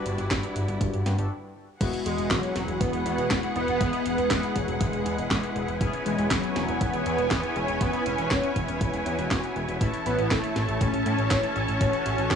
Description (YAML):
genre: italo disco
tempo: 120 BPM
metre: 4/4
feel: straight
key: E major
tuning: A4 = 440 Hz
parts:
  - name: rich studio string section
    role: sustained chords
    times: 0.0-12.4 s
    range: G3 to A5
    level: -32 LUFS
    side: equal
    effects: none
  - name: chorused polysynth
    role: stabs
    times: 0.0-12.4 s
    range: E3 to D5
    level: -32 LUFS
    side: left 5 dB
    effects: tape echo
  - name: fat analog bass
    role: bass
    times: 0.1-12.4 s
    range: E1 to A2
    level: -30 LUFS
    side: right 1 dB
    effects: none
  - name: house drum kit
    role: drums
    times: 0.1-12.4 s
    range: crash cymbal, handclaps, hi-hat, snare drum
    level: -30 LUFS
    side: right 1 dB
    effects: none
  - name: electronic kick drum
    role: drums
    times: 0.3-12.4 s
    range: none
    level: -29 LUFS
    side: equal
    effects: none
  - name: wide unison lead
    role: melody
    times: 2.1-12.4 s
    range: F#3 to C#4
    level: -28 LUFS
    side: equal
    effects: ensemble chorus, tape echo
room: little or no reverb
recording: dry, gritty hardware recording, transformer saturation, studio ambience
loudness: -24 LUFS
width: side -7 dB against mid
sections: 0.0-1.8 A section; 1.8-12.4 B section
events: stop 1.3-1.8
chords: 0.0 Gmaj7; 1.8 Eadd9; 5.8 C#m7/E; 9.8 A